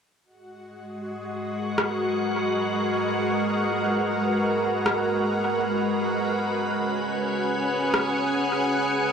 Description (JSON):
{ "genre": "ambient dub", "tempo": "free time", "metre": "none", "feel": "none", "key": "G# minor", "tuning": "A4 = 441 Hz", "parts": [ { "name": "soft additive organ-like pad", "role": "sustained chords", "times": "0.9-9.1 s", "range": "G#3 to F#5", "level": "-24 LUFS", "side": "equal", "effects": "ensemble chorus, built-in reverb" }, { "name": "bubbling stepped-filter texture", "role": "texture", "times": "0.5-9.1 s", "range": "F#4 to F#5", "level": "-32 LUFS", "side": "equal", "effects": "chorus, built-in reverb" }, { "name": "electronic rim click", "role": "drums", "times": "1.8-8.1 s", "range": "none", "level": "-28 LUFS", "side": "equal", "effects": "dub echo" } ], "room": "wet echo chamber reverb, RT60 1.9 s", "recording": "none", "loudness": "-22 LUFS", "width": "side -7 dB against mid", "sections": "0.2-9.1 A section", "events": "none", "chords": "0.2 G#m9; 6.4 C#7sus4" }